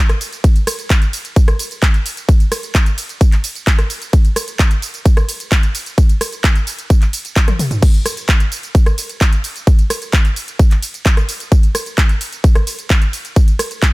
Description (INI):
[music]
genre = EDM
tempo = 130 BPM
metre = 4/4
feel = straight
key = none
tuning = none
[part]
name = big-room dance drum kit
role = drums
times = 0.1-13.9 s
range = crash cymbal, handclaps, hi-hat, ride cymbal, rim click, tambourine, toms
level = -20 LUFS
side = right 1 dB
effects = none
[part]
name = electronic kick drum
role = drums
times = 0.4-13.9 s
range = none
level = -11 LUFS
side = equal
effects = none
[sound]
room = little or no reverb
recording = none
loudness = -12 LUFS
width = side -22 dB against mid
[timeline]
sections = 0.0-13.9 A section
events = drum fill 7.5-7.8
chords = none